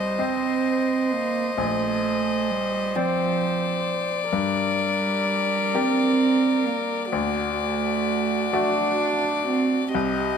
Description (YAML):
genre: neoclassical piano and strings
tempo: 43 BPM (dotted quarters)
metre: 6/8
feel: rubato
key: unclear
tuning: A4 = 439 Hz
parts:
  - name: warm violin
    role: melody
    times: 0.0-10.4 s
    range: D5 to Eb5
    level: -26 LUFS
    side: left 7 dB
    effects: none
  - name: clear cello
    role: second line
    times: 0.0-9.9 s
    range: F3 to D4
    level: -25 LUFS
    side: right 6 dB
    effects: none
  - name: bright grand piano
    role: accompaniment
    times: 0.0-10.4 s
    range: Bb1 to Eb5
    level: -28 LUFS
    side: left 5 dB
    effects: none
  - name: warm viola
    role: accompaniment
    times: 0.0-10.4 s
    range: F#4 to C5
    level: -30 LUFS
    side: right 2 dB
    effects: none
room: moderate spring reverb, RT60 2.7 s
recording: none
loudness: -21 LUFS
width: side -7 dB against mid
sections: 0.0-10.4 A section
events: none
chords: 0.0 Cm; 1.6 Bbadd9; 4.3 Gm; 7.1 D